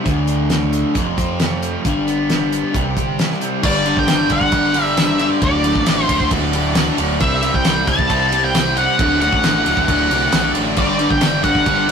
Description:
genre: classic rock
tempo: 134 BPM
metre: 4/4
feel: straight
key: unclear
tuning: A4 = 440 Hz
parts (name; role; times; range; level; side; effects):
- biting overdriven guitar; riff; 0.0-11.9 s; D2 to G4; -23 LUFS; right 7 dB; spring reverb
- distorted electric guitar; riff; 0.0-11.9 s; D2 to C4; -20 LUFS; left 4 dB; distortion
- growling fingered electric bass; bass; 0.1-11.9 s; D1 to F2; -24 LUFS; equal; overdrive
- damped 70s drum kit; drums; 0.1-11.9 s; crash cymbal, hi-hat, kick drum, ride cymbal, snare drum; -19 LUFS; equal; none
- bright tonewheel organ; sustained chords; 3.6-11.9 s; D4 to E5; -32 LUFS; right 3 dB; none
- octave-fuzz lead guitar; melody; 3.7-11.9 s; D5 to A5; -18 LUFS; left 1 dB; distortion
- tambourine; percussion; 4.1-11.3 s; none; -36 LUFS; right 8 dB; none
room: wet studio reverb, RT60 0.6 s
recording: rough rehearsal-room recording, warm saturation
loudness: -14 LUFS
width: side -6 dB against mid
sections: 0.0-3.6 A section; 3.6-11.9 B section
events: none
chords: 0.1 D5; 1.0 F; 1.9 G; 2.7 C; 3.6 G; 5.4 D; 7.2 C; 9.0 D; 10.8 G

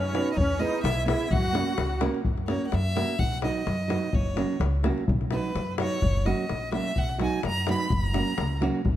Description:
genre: balkan folk, Balkan wedding band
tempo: 127 BPM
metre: 2/4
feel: swing 54% on 16ths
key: F# mixolydian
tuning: A4 = 444 Hz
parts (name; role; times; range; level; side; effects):
- clear violin; melody; 0.0-8.6 s; B4 to B5; -32 LUFS; equal; none
- musette accordion; second line; 0.0-2.0 s; C#4 to F#4; -32 LUFS; equal; none
- upright bass; bass; 0.0-9.0 s; F#1 to F#2; -29 LUFS; equal; none
- nylon-string guitar; accompaniment; 0.1-8.8 s; F#3 to B4; -30 LUFS; right 4 dB; none
- davul; percussion; 0.1-9.0 s; none; -29 LUFS; left 3 dB; none
room: light reverb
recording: dark, warm production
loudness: -24 LUFS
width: side -12 dB against mid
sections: 0.0-2.3 A section; 2.3-9.0 B section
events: violin solo 2.3-9.0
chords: 0.4 E; 1.3 F#; 3.2 B; 4.1 F#; 5.1 B; 6.0 F#; 7.0 B; 7.9 F#

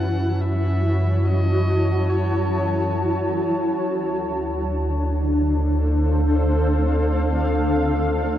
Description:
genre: ambient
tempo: free time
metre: none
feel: none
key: unclear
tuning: A4 = 445 Hz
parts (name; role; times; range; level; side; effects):
- clear electric violin; melody; 0.0-3.4 s; C#5 to F#5; -35 LUFS; equal; tape echo
- granular cloud pad; sustained chords; 0.0-8.4 s; C#4 to A5; -22 LUFS; equal; built-in reverb
- warm sub bass; bass; 0.0-8.4 s; D2 to F#2; -22 LUFS; equal; none
room: moderate huge ambient reverb, RT60 7.8 s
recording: worn, warbling old tape, cassette tape, warbly pitch drift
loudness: -19 LUFS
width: side -11 dB against mid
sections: 0.0-8.4 A section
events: fade-in on electric violin 0.0-8.4; filter sweep on ambient pad 0.0-8.4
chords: 0.0 F#m7; 3.8 Dm7

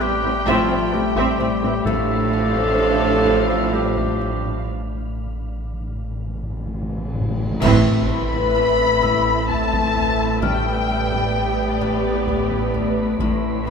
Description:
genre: cinematic, suspense film score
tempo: 64 BPM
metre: 3/4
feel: uneven beats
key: A minor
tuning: A4 = 440 Hz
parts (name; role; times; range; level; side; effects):
- muted studio violin section; melody; 0.0-13.7 s; F5 to B5; -25 LUFS; left 4 dB; none
- clear clarinet; second line; 0.0-4.7 s; F4 to A4; -23 LUFS; right 1 dB; none
- dark trombone section; sustained chords; 0.0-4.7 s; C3 to G3; -30 LUFS; right 4 dB; none
- warm French horn section; sustained chords; 0.0-13.7 s; F3 to B4; -26 LUFS; left 3 dB; none
- wind-like tuned noise texture; sustained chords; 0.0-13.7 s; D4 to B5; -32 LUFS; equal; built-in reverb
- Celtic harp; riff; 0.0-13.7 s; A2 to A3; -28 LUFS; left 8 dB; none
- pure sine sub bass; drone; 0.0-13.7 s; A1; -29 LUFS; equal; none
- celesta; texture; 0.0-1.9, 9.0-13.2 s; E6 to F6; -32 LUFS; left 4 dB; none
- muted studio violin section; second line; 0.2-13.7 s; B4 to E5; -29 LUFS; equal; none
- muted studio viola section; accompaniment; 0.2-13.7 s; B3 to G4; -26 LUFS; right 3 dB; none
- muted studio cello section; bass; 0.2-13.7 s; A2; -27 LUFS; right 4 dB; none
- muted studio double bass section; bass; 0.5-13.7 s; A1; -28 LUFS; right 4 dB; none
- taiko ensemble; drums; 0.5-13.7 s; none; -30 LUFS; equal; none
- timpani; percussion; 1.9-7.6 s; A2; -28 LUFS; left 1 dB; none
- cymbal swell, clash cymbals and concert bass drum; percussion; 4.7-9.5 s; none; -31 LUFS; right 1 dB; none
- impact; sound effects; 7.6-10.4 s; none; barely audible; none; none
room: wet concert hall reverb, RT60 2.1 s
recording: minimal, uncompressed stereo recording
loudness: -17 LUFS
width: side -6 dB against mid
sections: 0.0-7.6 A section; 7.6-13.7 B section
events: break 4.7-7.6; timpani fill 4.7-7.6; band accent 7.6-8.6; impact 7.6-10.4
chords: 0.0 Cmaj7/A; 1.9 Dm7/A; 4.7 N.C.; 7.6 Amadd9; 10.4 G/A; 13.2 Amadd9

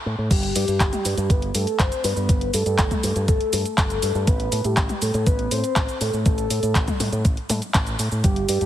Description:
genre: italo disco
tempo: 121 BPM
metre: 4/4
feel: straight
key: A minor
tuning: A4 = 438 Hz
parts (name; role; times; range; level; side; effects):
- fingered electric bass with an envelope filter; bass; 0.1-8.7 s; G1 to A2; -25 LUFS; equal; tube saturation
- soft octave-layered synth lead; melody; 0.3-8.7 s; G4 to C5; -25 LUFS; equal; chorus, phaser, digital delay
- electronic kick drum; drums; 0.3-8.3 s; none; -20 LUFS; equal; none
- house drum kit; drums; 0.3-8.7 s; cabasa, crash cymbal, handclaps, hi-hat, toms; -26 LUFS; equal; none
room: light reverb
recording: heavily compressed radio sound, multiband compression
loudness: -19 LUFS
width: side -12 dB against mid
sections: 0.3-8.7 A section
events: none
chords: 0.3 Gsus2; 4.3 Am

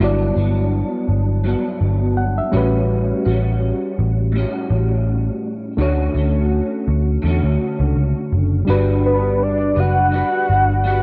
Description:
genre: indie pop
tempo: 83 BPM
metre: 4/4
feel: swing 55% on 16ths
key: D major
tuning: A4 = 441 Hz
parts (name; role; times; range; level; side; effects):
- electric guitar through a small old amp; accompaniment; 0.0-11.0 s; G2 to B4; -25 LUFS; equal; ensemble chorus, vibrato effect
- reed electric piano; accompaniment; 0.0-11.0 s; G3 to F#5; -27 LUFS; equal; cassette tape
- vintage muted picked electric bass; bass; 0.0-11.0 s; F#1 to E2; -20 LUFS; equal; none
- soft octave-layered synth lead; melody; 9.1-11.0 s; B4 to F#5; -20 LUFS; equal; ensemble chorus
room: little or no reverb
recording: dry, close 1970s-style studio recording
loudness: -18 LUFS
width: mono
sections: 0.0-8.7 A section; 8.7-11.0 B section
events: reed electric piano fill 1.8-2.9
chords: 0.0 Em9/G; 2.5 A13; 5.8 Dmaj7; 8.7 Gmaj7

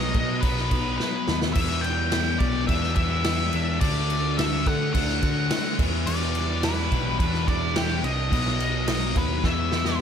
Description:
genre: classic rock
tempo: 107 BPM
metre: 4/4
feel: straight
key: E minor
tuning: A4 = 439 Hz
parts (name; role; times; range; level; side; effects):
- octave-fuzz lead guitar; melody; 0.0-10.0 s; G4 to G5; -29 LUFS; left 3 dB; distortion
- crunchy overdriven guitar; riff; 0.0-10.0 s; B2 to F#4; -32 LUFS; right 12 dB; slapback echo
- distorted electric guitar; riff; 0.0-10.0 s; E2 to D4; -30 LUFS; left 11 dB; distortion
- growling picked electric bass; bass; 0.0-10.0 s; B1 to D3; -27 LUFS; right 1 dB; overdrive
- vintage drum kit; drums; 0.1-10.0 s; crash cymbal, kick drum, snare drum; -26 LUFS; equal; none
room: light reverb, small room ambience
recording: none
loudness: -22 LUFS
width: side -8 dB against mid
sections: 0.0-10.0 A section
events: drum fill 1.0-1.6, 9.4-10.0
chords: 0.0 B; 1.6 Em7; 3.8 D; 5.8 Em7; 8.3 B; 9.4 E5

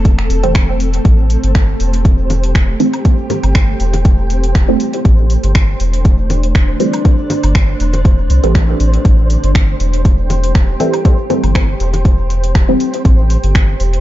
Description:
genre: dub techno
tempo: 120 BPM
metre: 4/4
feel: swing 54% on 16ths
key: A minor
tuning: A4 = 441 Hz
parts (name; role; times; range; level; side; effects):
- granular cloud pad; sustained chords; 0.0-14.0 s; A3 to C5; -22 LUFS; equal; built-in reverb, sidechain pumping
- soft dub sub bass; bass; 0.0-14.0 s; E1 to C2; -14 LUFS; equal; sidechain pumping
- deep house drum kit; drums; 0.1-14.0 s; finger snaps, hi-hat; -24 LUFS; equal; overdrive, dub echo
- electronic kick drum; drums; 0.1-13.7 s; none; -10 LUFS; equal; overdrive
- filtered dub chord stab; stabs; 0.4-12.8 s; E3 to C4; -18 LUFS; right 1 dB; phaser, vintage 12-bit sampler grit, sidechain pumping, dub echo
- flickering grainy texture; texture; 1.4-14.0 s; C5; -27 LUFS; right 2 dB; built-in reverb, sidechain pumping
- congas and woodblock; percussion; 2.3-12.0 s; none; -25 LUFS; left 2 dB; sidechain pumping on perc, dub echo
room: little or no reverb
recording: dark, warm production, nothing above 7.5 kHz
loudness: -10 LUFS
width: side -14 dB against mid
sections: 0.0-14.0 A section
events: none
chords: 0.0 Am7

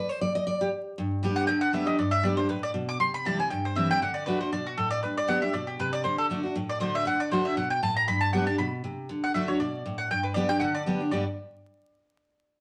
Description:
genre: bluegrass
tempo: 237 BPM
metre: 4/4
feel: swing 54% on 8ths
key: G major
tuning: A4 = 444 Hz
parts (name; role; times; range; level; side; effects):
- picked steel-string acoustic guitar; accompaniment; 0.0-11.2 s; G2 to Eb5; -30 LUFS; equal; none
- mandolin; melody; 1.4-11.2 s; F#4 to D6; -30 LUFS; equal; none
room: wet studio reverb, RT60 0.7 s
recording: vinyl crackle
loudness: -28 LUFS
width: mono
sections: 1.0-9.1 A section; 9.1-11.1 B section; 11.1-12.1 C section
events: none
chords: 0.0 N.C.; 1.0 G; 3.0 C; 4.0 D; 5.0 G; 6.0 D; 8.1 G; 9.1 D; 10.1 G

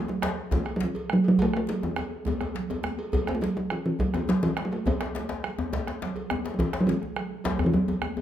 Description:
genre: west african traditional, West African drum ensemble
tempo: 138 BPM (dotted quarters)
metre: 12/8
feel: straight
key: unclear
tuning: A4 = 440 Hz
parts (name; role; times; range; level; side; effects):
- talking drum; melody; 0.0-8.2 s; E3 to B3; -25 LUFS; right 1 dB; none
- bombo; percussion; 0.1-8.2 s; none; -34 LUFS; right 2 dB; none
- djembe; percussion; 0.1-8.0 s; none; -36 LUFS; left 3 dB; none
- congas; percussion; 0.2-8.2 s; none; -36 LUFS; right 3 dB; none
- cowbell; percussion; 0.2-8.2 s; none; -36 LUFS; right 2 dB; none
- djembe; percussion; 0.2-8.2 s; none; -32 LUFS; left 4 dB; none
room: moderate large studio reverb, RT60 1.2 s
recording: band playing live in one room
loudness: -25 LUFS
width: side -11 dB against mid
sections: 0.0-8.2 A section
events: none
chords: none

